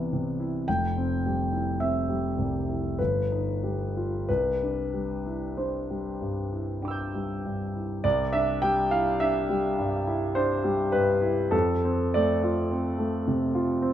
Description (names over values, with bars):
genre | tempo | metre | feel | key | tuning
classical, impressionist solo piano | 45-54 BPM | 3/4 | rubato | C major | A4 = 440 Hz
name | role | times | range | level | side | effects
clear concert grand piano | solo | 0.0-13.9 s | F1 to G6 | -24 LUFS | equal | none
room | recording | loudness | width
moderate recital hall reverb, RT60 1.5 s | none | -24 LUFS | side -10 dB against mid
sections
0.0-8.0 A section; 8.0-13.9 A section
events
none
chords
0.0 Amadd9/C; 0.7 Fsus2; 3.0 Gaug7; 4.3 Cadd9; 11.5 F6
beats
| 0.67 1.80 2.98 | 4.28 5.57 6.82 | 8.04 9.21 10.36 | 11.53 12.71 13.82